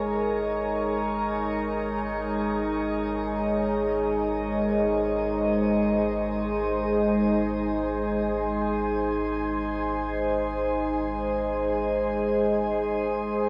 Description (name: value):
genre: ambient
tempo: free time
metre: none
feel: none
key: Ab major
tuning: A4 = 440 Hz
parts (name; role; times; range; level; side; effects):
- evolving wavetable pad; sustained chords; 0.0-13.5 s; Ab3 to Db5; -26 LUFS; equal; phaser, built-in reverb
- warm sub bass; bass; 0.0-13.5 s; Ab1; -41 LUFS; equal; none
room: wet shimmer reverb, RT60 8.5 s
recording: studio reverb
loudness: -26 LUFS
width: mono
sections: 0.0-13.5 A section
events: fade-in on sub bass 0.0-13.5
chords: 0.0 Absus4